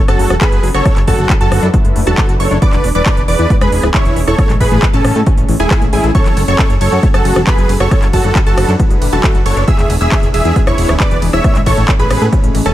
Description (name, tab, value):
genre	uplifting trance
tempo	136 BPM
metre	4/4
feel	straight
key	unclear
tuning	A4 = 440 Hz
part	lush unison pad	sustained chords	0.1-12.7 s	E3 to B4	-23 LUFS	equal	chorus, vintage 12-bit sampler grit, sidechain pumping
part	tight sequenced synth	arpeggios	0.0-12.7 s	A2 to A4	-22 LUFS	left 3 dB	chorus, sidechain pumping, tape echo
part	dense compressed supersaw	melody	0.1-12.7 s	C#4 to E5	-17 LUFS	right 1 dB	sidechain pumping, tape echo
part	wide unison pluck	second line	0.1-12.7 s	G#5 to E6	-24 LUFS	right 2 dB	sidechain pumping, tape echo
part	fat analog bass	bass	0.1-12.7 s	D1 to A2	-16 LUFS	equal	tube saturation, sidechain pumping
part	big-room dance drum kit	drums	0.1-12.7 s	handclaps, hi-hat, ride cymbal, rim click	-21 LUFS	equal	none
part	electronic kick drum	drums	0.4-12.4 s	none	-12 LUFS	equal	none
room	digital ambience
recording	none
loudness	-9 LUFS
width	side -14 dB against mid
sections	0.0-12.7 A section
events	none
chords	0.0 F#madd9; 0.9 D6/F#; 2.6 E7; 4.4 Amaj7; 6.1 F#madd9; 7.9 D6/F#; 9.7 E7; 11.4 Amaj7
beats	0.41 | 0.85 1.30 1.74 2.18 | 2.62 3.06 3.50 3.94 | 4.38 4.83 5.27 5.71 | 6.15 6.59 7.03 7.47 | 7.91 8.36 8.80 9.24 | 9.68 10.12 10.56 11.00 | 11.44 11.88 12.32